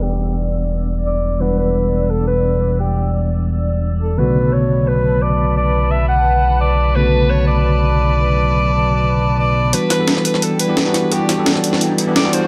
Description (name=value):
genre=liquid drum and bass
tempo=173 BPM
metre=4/4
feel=straight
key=E minor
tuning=A4 = 440 Hz
part: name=clear alto saxophone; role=melody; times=0.0-12.5 s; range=G4 to F#5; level=-22 LUFS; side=equal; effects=vintage 12-bit sampler grit, digital delay
part: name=bell-like tine electric piano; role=accompaniment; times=0.0-12.5 s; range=C#3 to F#5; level=-22 LUFS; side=equal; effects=none
part: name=glassy FM pad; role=sustained chords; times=0.0-12.5 s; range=E4 to E6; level=-28 LUFS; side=equal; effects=ensemble chorus, built-in reverb
part: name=smooth gliding synth bass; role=bass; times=0.0-9.7 s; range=E1 to B1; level=-20 LUFS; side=equal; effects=none
part: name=downlifter and riser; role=sound effects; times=0.0-1.4, 11.7-12.5 s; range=none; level=-36 LUFS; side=equal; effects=none
part: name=breakbeat sampler-style drum kit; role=drums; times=9.7-12.4 s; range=hi-hat, snare drum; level=-20 LUFS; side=equal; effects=small room ambience
room=light reverb, studio reverb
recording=low-pass filter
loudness=-16 LUFS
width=mono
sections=0.0-9.7 A section; 9.7-12.5 B section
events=filter sweep 0.0-9.7; build-up 9.7-12.5; filter sweep on ambient pad 9.7-12.5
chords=0.0 Em7; 4.2 Bm7; 9.7 Em7